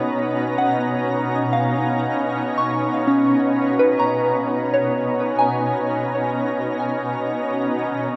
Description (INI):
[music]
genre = ambient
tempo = free time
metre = none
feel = none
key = unclear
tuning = A4 = 441 Hz
[part]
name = shimmering ambient pad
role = sustained chords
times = 0.0-8.2 s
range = B2 to A#5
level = -23 LUFS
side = equal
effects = chorus, built-in reverb
[part]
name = soft synth bell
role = arpeggios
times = 0.6-8.2 s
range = C#4 to C#6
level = -24 LUFS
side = equal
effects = chorus, delay
[sound]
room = wet huge ambient reverb, RT60 8.7 s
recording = none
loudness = -21 LUFS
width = mono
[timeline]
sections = 0.0-8.2 A section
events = none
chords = 0.0 Bmaj9; 7.4 Eb7(no3)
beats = free time